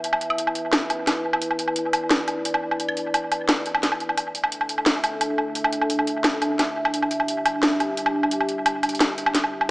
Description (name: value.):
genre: half-time drum and bass.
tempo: 174 BPM.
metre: 4/4.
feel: half-time.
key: unclear.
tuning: A4 = 440 Hz.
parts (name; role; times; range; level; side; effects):
dark analog pad; sustained chords; 0.0-9.7 s; D4 to E5; -26 LUFS; equal; chorus, sidechain pumping.
drum and bass drum kit; drums; 0.0-9.7 s; hi-hat, snare drum, woodblock; -22 LUFS; equal; dub echo.
room: wet plate reverb, RT60 1.5 s.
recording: echo-heavy mix, small speaker sound.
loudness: -20 LUFS.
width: side -22 dB against mid.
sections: 0.0-9.7 A section.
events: none.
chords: 0.0 E5; 4.2 Dsus2.